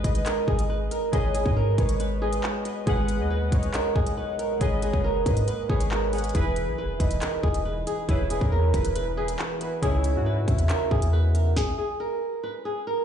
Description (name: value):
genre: hip hop, drill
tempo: 138 BPM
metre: 4/4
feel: half-time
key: G# minor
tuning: A4 = 439 Hz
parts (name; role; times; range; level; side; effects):
- flamenco guitar; melody; 0.0-13.0 s; E4 to B4; -29 LUFS; right 1 dB; low-pass filter, digital delay
- soft octave-layered synth lead; second line; 0.0-11.5 s; A#4 to E5; -33 LUFS; right 1 dB; chorus, phaser, digital delay
- warbly lo-fi synth keys; accompaniment; 0.0-11.6 s; C#3 to F#5; -32 LUFS; equal; chorus, low-pass filter
- hard-hitting 808-style bass; bass; 0.0-11.5 s; E1 to G#2; -26 LUFS; equal; none
- drill drum kit; drums; 0.0-11.7 s; handclaps, hi-hat, kick drum, snare drum; -27 LUFS; equal; none
room: digital ambience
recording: played on a big sound system in a bare room, large studio reverb, nothing above 10.3 kHz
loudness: -22 LUFS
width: side -9 dB against mid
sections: 0.0-13.0 A section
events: stop 11.6-13.0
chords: 0.0 G#m; 6.3 E; 9.8 C#madd9